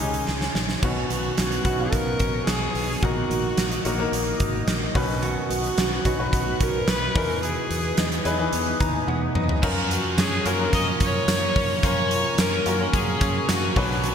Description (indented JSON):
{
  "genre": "1980s-style pop",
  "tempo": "109 BPM",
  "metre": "4/4",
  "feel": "straight",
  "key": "F# major",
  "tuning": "A4 = 440 Hz",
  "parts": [
    { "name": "rich viola", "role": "melody", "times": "0.0-13.9 s", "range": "D#4 to D#5", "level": "-28 LUFS", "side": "equal", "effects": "none" },
    { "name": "clear baby grand piano", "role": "accompaniment", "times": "0.0-14.1 s", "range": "A#2 to A#5", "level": "-29 LUFS", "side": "left 3 dB", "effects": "none" },
    { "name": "direct-recorded clean electric guitar", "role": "riff", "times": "0.0-14.1 s", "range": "D#3 to G#4", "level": "-32 LUFS", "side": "right 3 dB", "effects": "lush chorus, ping-pong delay" },
    { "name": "fingered electric bass", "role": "bass", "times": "0.0-14.1 s", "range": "G#1 to F#2", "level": "-29 LUFS", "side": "equal", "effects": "none" },
    { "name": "huge arena drum kit", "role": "drums", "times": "0.0-14.1 s", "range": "crash cymbal, hi-hat, kick drum, snare drum, tambourine, toms", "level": "-25 LUFS", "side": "right 1 dB", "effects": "gated reverb" },
    { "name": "glassy FM pad", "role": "sustained chords", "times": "1.4-14.1 s", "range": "B3 to D#6", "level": "-32 LUFS", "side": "equal", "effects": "ensemble chorus, built-in reverb, phaser" },
    { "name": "high-gain distorted guitar", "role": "accompaniment", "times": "9.6-14.1 s", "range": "B2 to F#4", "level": "-30 LUFS", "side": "left 1 dB", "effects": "distortion, lush chorus" }
  ],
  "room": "moderate lush hall reverb, RT60 2.1 s",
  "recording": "bright 1980s-style digital production",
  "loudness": "-21 LUFS",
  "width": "side -8 dB against mid",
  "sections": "0.8-9.6 A section; 9.6-14.1 B section",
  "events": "drum fill 0.3-0.8, 9.1-9.6; grand piano fill 8.5-9.6",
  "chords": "0.0 C#sus2; 0.8 Badd9; 3.0 D#m/A#; 5.0 Badd9; 7.2 Emaj7; 9.6 F#maj7"
}